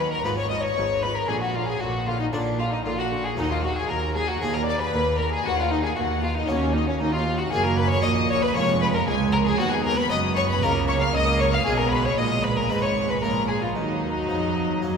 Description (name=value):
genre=classical, baroque-style concerto movement with solo episodes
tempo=116 BPM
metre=4/4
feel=straight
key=Eb minor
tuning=A4 = 440 Hz
part: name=rich chamber violin section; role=melody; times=0.0-15.0 s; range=Db5 to F6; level=-30 LUFS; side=left 5 dB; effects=none
part: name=rich violin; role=melody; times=0.0-15.0 s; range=Db4 to F5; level=-28 LUFS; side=left 2 dB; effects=none
part: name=rich chamber violin section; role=second line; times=0.0-15.0 s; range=Db4 to F5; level=-28 LUFS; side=left 3 dB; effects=none
part: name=harpsichord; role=accompaniment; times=0.0-15.0 s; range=Db2 to B4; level=-34 LUFS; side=equal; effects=none
part: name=warm chamber viola section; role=accompaniment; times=0.0-15.0 s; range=D3 to B3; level=-30 LUFS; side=right 3 dB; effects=none
part: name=dark chamber double bass section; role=bass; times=0.0-15.0 s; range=F1 to Gb2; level=-29 LUFS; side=right 3 dB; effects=none
part: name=warm chamber cello section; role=bass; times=0.0-15.0 s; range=Db2 to Gb3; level=-29 LUFS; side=right 3 dB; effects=none
room=wet cathedral reverb, RT60 5.5 s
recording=recorded in a church or concert hall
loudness=-21 LUFS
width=side -6 dB against mid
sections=0.0-15.0 A section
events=none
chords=0.2 Fdim/Ab; 1.3 Bb; 3.4 Ebm; 4.4 Bb/Eb; 5.5 Ebm; 7.5 Ebm/Gb; 8.6 Db/F; 9.6 B/D#; 10.6 Bbm/Db; 11.7 Abm/Cb; 12.7 Ab5; 13.2 Bb7; 13.8 Ebm